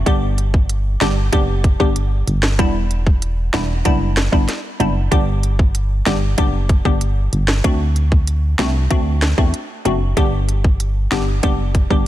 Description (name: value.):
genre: dancehall.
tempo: 95 BPM.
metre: 4/4.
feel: straight.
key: G major.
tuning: A4 = 440 Hz.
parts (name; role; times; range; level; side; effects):
solid FM bass; bass; 0.0-12.1 s; E1 to E2; -18 LUFS; equal; none.
glassy wavetable pluck; accompaniment; 0.1-12.0 s; G3 to G4; -21 LUFS; left 1 dB; chorus.
island pop drum kit; drums; 0.1-12.1 s; hi-hat, kick drum, snare drum; -17 LUFS; equal; vintage 12-bit sampler grit.
room: digital ambience.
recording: dense, heavily limited modern master.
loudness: -15 LUFS.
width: side -14 dB against mid.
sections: 0.0-12.1 A section.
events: none.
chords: 0.1 G; 2.6 Em7; 5.1 G; 7.6 D7; 10.2 G.